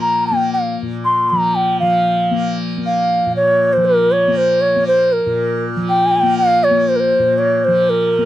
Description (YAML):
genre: indian classical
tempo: 118 BPM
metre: 3/4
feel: straight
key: Bb raga shivaranjani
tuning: A4 = 440 Hz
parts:
  - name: mellow hollow bansuri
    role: melody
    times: 0.0-8.3 s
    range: Bb4 to C6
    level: -13 LUFS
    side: equal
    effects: none
  - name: tanpura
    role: drone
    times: 0.0-8.3 s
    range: Bb2 to Bb3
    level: -20 LUFS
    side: left 2 dB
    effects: stereo widening
room: little or no reverb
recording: dry, close 1970s-style studio recording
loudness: -13 LUFS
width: side -13 dB against mid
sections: 0.0-1.8 A section; 1.8-8.3 B section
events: none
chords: none